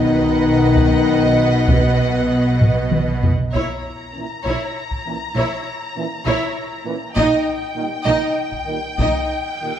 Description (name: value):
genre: cinematic, epic orchestral film score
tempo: 66 BPM (dotted quarters)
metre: 6/8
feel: straight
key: unclear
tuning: A4 = 440 Hz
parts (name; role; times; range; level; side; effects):
- warm symphonic violin section; melody; 0.0-9.8 s; F#5 to A#5; -28 LUFS; left 4 dB; none
- warm symphonic violin section; second line; 0.0-9.3 s; C#5 to D#5; -24 LUFS; right 1 dB; none
- warm symphonic viola section; accompaniment; 0.0-9.3 s; D#4 to B4; -25 LUFS; right 1 dB; none
- dark French horn section; sustained chords; 0.0-9.7 s; G3 to D#4; -22 LUFS; left 8 dB; none
- mellow trombone section; sustained chords; 0.0-9.7 s; A#2 to E3; -26 LUFS; right 2 dB; none
- rich symphonic cello section; bass; 0.0-9.1 s; A#2 to B2; -22 LUFS; right 1 dB; none
- warm symphonic double bass section; bass; 0.0-9.1 s; A#1 to B1; -23 LUFS; right 2 dB; none
- taiko ensemble; drums; 0.8-9.6 s; none; -20 LUFS; equal; none
- reverse cymbal; sound effects; 9.5-9.8 s; none; -43 LUFS; equal; none
room: moderate scoring stage reverb, RT60 1.9 s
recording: dark, warm production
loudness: -16 LUFS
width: side -10 dB against mid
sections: 0.0-3.5 A section; 3.5-9.8 B section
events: drum fill 2.6-3.5; reverse cymbal 9.5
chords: 0.0 B; 3.5 A#dim; 7.2 D#/A#